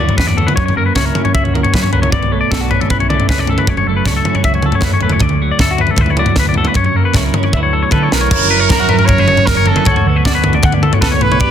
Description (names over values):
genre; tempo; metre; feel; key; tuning
math rock and midwest emo; 155 BPM; 4/4; straight; D major; A4 = 440 Hz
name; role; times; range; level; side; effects
twelve-string electric guitar; accompaniment; 0.0-11.5 s; D2 to G4; -20 LUFS; right 7 dB; none
twangy electric guitar; arpeggios; 0.0-11.5 s; F#4 to F#5; -17 LUFS; left 6 dB; spring reverb, analog delay
hollow-body short-scale picked electric bass; bass; 0.0-11.5 s; E1 to F#3; -18 LUFS; equal; none
crisp fusion drum kit; drums; 0.1-11.5 s; crash cymbal, kick drum, snare drum, toms; -14 LUFS; left 1 dB; none
bright trumpet; melody; 7.9-11.5 s; A4 to C#5; -17 LUFS; right 4 dB; analog delay
room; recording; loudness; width
little or no reverb; dense, heavily limited modern master; -11 LUFS; side -9 dB against mid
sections
0.0-8.3 A section; 8.3-11.5 B section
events
drum fill 7.5-8.3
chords
0.0 D69; 0.6 F#7; 2.1 Bm9; 3.7 F#m7; 5.2 D69; 6.8 F#7; 7.5 D69; 8.3 F#7; 9.9 D6